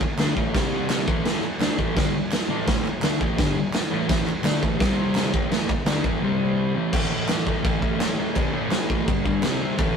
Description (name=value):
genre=garage rock duo or trio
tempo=169 BPM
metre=4/4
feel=straight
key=unclear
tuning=A4 = 443 Hz
part: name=fuzz guitar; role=riff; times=0.0-10.0 s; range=G2 to D4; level=-24 LUFS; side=equal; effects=distortion
part: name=raw garage drum kit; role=drums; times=0.0-9.9 s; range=crash cymbal, kick drum, snare drum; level=-24 LUFS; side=equal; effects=none
part: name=group handclap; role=percussion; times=0.0-9.5 s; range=none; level=-35 LUFS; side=right 1 dB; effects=none
room=light reverb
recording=rough rehearsal-room recording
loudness=-21 LUFS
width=side -6 dB against mid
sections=0.0-6.9 A section; 6.9-10.0 B section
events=none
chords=0.0 A5; 0.5 C5; 1.1 A5; 4.8 C5; 5.3 A5; 6.2 C5; 6.8 A5; 9.1 G5; 9.4 C5